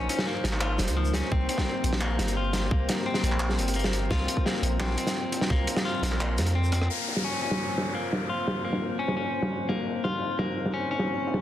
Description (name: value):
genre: half-time drum and bass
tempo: 172 BPM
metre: 4/4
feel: half-time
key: Bb dorian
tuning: A4 = 440 Hz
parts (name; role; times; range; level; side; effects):
- dark analog pad; sustained chords; 0.0-11.4 s; Bb3 to C5; -36 LUFS; right 1 dB; chorus, sidechain pumping
- clean electric guitar; arpeggios; 0.0-11.4 s; F3 to F4; -32 LUFS; left 4 dB; low-pass filter, dub echo
- long sustained 808-style bass; bass; 0.0-6.9 s; F1 to F2; -27 LUFS; equal; none
- metallic inharmonic drone; texture; 0.0-11.4 s; Bb3 to C5; -38 LUFS; left 1 dB; chorus, built-in reverb
- crunchy breakbeat drum kit; drums; 0.1-11.4 s; handclaps, hi-hat, rim click, shaker, snare drum; -29 LUFS; equal; low-pass filter on hats, soft clipping on snare, low-pass filter on snare, low-pass filter on perc, low-pass filter on room
- electronic kick drum; drums; 1.3-5.6 s; none; -28 LUFS; equal; overdrive
- downlifter; sound effects; 6.9-9.7 s; none; -35 LUFS; left 2 dB; none
room: light reverb, small room ambience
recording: dense, heavily limited modern master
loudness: -25 LUFS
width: side -12 dB against mid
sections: 0.0-6.9 A section; 6.9-11.4 B section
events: drop 0.0-6.9; drum fill 6.7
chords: 0.0 Bbm7; 1.3 C5; 6.9 Bbm